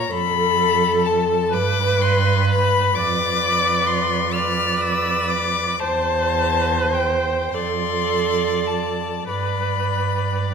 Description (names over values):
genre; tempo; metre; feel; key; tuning
classical, slow romantic movement for string quartet; 33-44 BPM (dotted quarters); 6/8; rubato; unclear; A4 = 442 Hz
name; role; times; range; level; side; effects
rich violin; melody; 0.0-10.5 s; G5 to F6; -22 LUFS; left 10 dB; none
rich violin; second line; 0.0-10.5 s; A4 to D5; -26 LUFS; left 1 dB; none
warm viola; accompaniment; 0.0-10.5 s; A4 to D5; -23 LUFS; right 3 dB; none
warm cello; bass; 0.0-10.5 s; E2 to G2; -24 LUFS; right 4 dB; none
room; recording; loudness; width
moderate recital hall reverb, RT60 1.4 s; none; -17 LUFS; side -6 dB against mid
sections
0.0-10.5 A section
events
none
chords
0.1 F; 1.5 G; 3.0 Dm6/F; 5.8 C/E; 7.5 Dm7/F; 9.3 G